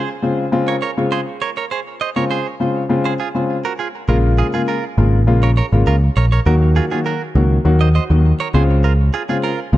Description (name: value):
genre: afrobeats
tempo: 101 BPM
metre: 4/4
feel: straight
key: Db major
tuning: A4 = 439 Hz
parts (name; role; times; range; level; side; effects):
- direct-recorded clean electric guitar; riff; 0.0-9.6 s; F4 to Eb5; -23 LUFS; right 7 dB; warbly pitch drift, tape echo
- warm baby grand piano; accompaniment; 0.2-9.8 s; Db3 to Gb4; -19 LUFS; left 2 dB; none
- picked electric bass; bass; 4.1-9.8 s; Ab1 to Eb2; -13 LUFS; equal; none
room: light reverb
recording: echo-heavy mix, nothing above 11.0 kHz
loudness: -14 LUFS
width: side -15 dB against mid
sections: 0.0-9.8 A section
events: none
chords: 0.0 Dbmaj7; 4.1 Bbm7; 6.5 Ebm; 8.5 Dbmaj7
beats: 0.52 1.11 | 1.71 2.30 2.90 3.49 | 4.09 4.68 5.27 5.87 | 6.46 7.06 7.65 8.24 | 8.84 9.43